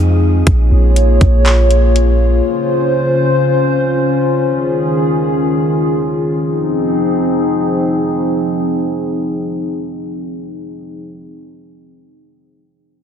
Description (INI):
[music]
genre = hip hop, atmospheric cloud-rap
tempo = 121 BPM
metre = 4/4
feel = half-time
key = F minor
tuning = A4 = 439 Hz
[part]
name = dark analog pad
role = sustained chords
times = 0.0-11.0 s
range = Db3 to Db5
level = -14 LUFS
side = left 1 dB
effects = wide subtle chorus, sidechain pumping
[part]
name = clean 808-style bass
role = bass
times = 0.0-2.4 s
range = Bb1 to F2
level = -11 LUFS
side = equal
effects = none
[part]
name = trap drum kit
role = drums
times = 0.5-2.1 s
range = handclaps, hi-hat, kick drum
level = -14 LUFS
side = equal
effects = none
[sound]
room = digital ambience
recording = dense, heavily limited modern master, low-pass filter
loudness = -12 LUFS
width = side -8 dB against mid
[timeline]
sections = 0.0-6.4 A section; 6.4-10.4 B section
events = filter sweep 0.0-6.4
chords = 0.5 Bbm7; 2.5 Dbmaj7; 4.4 Eb9sus4; 6.4 Fm7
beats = | 0.47 0.96 1.46 1.96 | 2.45 2.95 3.44 3.94 | 4.43 4.93 5.43 5.92 | 6.42 6.91 7.41 7.91 | 8.40 8.90 9.39 9.89